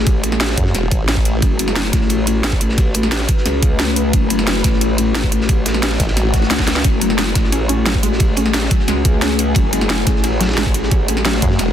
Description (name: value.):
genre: dark technical drum and bass.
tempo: 177 BPM.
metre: 4/4.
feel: straight.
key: F# minor.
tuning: A4 = 441 Hz.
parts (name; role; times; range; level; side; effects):
deep dark ambient pad; sustained chords; 0.0-11.7 s; A3 to B4; -21 LUFS; left 3 dB; chorus, built-in reverb, sidechain pumping.
growl bass; bass; 0.0-11.4 s; F#1 to C#2; -20 LUFS; equal; chorus, sidechain pumping.
crunchy breakbeat drum kit; drums; 0.1-11.7 s; ride cymbal, snare drum; -28 LUFS; equal; high-pass filter on cymbals, high-pass filter on snare, high-pass filter on room.
drum and bass drum kit; drums; 0.1-11.7 s; hi-hat, snare drum; -20 LUFS; right 1 dB; overdrive.
electronic kick drum; drums; 0.1-11.5 s; none; -17 LUFS; equal; overdrive.
formant-sweep wobble bass; bass; 0.6-1.4, 6.0-6.5, 11.4-11.7 s; E1 to F#2; -18 LUFS; equal; chorus.
swell; sound effects; 6.2-6.8 s; none; -29 LUFS; left 2 dB; none.
wide unison pluck; arpeggios; 6.8-11.5 s; F#3 to C#4; -24 LUFS; moving between left 7 dB and right 2 dB; auto-pan, sidechain pumping, ping-pong delay.
room: light reverb, digital ambience.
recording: dense, heavily limited modern master.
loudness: -14 LUFS.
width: side -10 dB against mid.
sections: 0.0-11.7 A section.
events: swell 6.2-6.8; drum fill 6.6.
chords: 0.0 F#madd9.